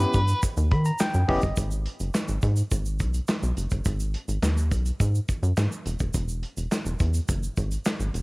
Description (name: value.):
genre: early-eighties boogie funk.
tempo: 105 BPM.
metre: 4/4.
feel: straight.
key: G# minor.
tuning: A4 = 440 Hz.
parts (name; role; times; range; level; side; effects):
barky tine electric piano; accompaniment; 0.0-1.6 s; B3 to B5; -28 LUFS; left 1 dB; overdrive, cassette tape.
rubbery square bass; bass; 0.0-8.2 s; D#1 to D#3; -24 LUFS; equal; none.
modern studio drum kit; drums; 0.0-8.2 s; handclaps, hi-hat, kick drum, snare drum; -28 LUFS; equal; cassette tape.
egg shaker; percussion; 0.0-8.2 s; none; -40 LUFS; right 4 dB; none.
room: small room ambience.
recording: home recording on cassette.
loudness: -23 LUFS.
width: side -25 dB against mid.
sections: 0.0-1.6 A section; 1.6-8.2 B section.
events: tine electric piano fill 0.4-1.6.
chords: 0.0 D#7b9b13; 1.6 G#m; 5.9 E.